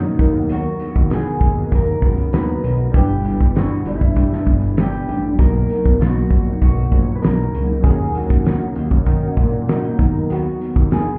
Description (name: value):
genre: indie pop, bedroom pop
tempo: 98 BPM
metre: 4/4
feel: straight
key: unclear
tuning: A4 = 440 Hz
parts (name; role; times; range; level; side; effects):
- electric guitar through a small old amp; melody; 0.0-11.2 s; D#4 to B4; -28 LUFS; equal; analog chorus, plate reverb
- nylon-string guitar; accompaniment; 0.0-11.2 s; G2 to A#4; -27 LUFS; equal; ensemble chorus, vibrato effect, plate reverb
- warbly lo-fi synth keys; accompaniment; 0.0-11.2 s; F#3 to A#5; -29 LUFS; equal; chorus, plate reverb
- fat analog bass; bass; 0.0-11.0 s; G1 to D#3; -23 LUFS; equal; none
- loose indie drum kit; drums; 0.2-11.1 s; hi-hat, kick drum, snare drum; -20 LUFS; equal; vintage 12-bit sampler grit
room: light reverb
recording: heard muffled through a wall, club reverb, EQ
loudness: -17 LUFS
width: mono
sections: 0.0-11.2 A section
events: none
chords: 0.2 Bmaj7/D#; 2.9 G6; 5.4 Bmaj7; 7.8 D#m7; 10.0 Bmaj7/D#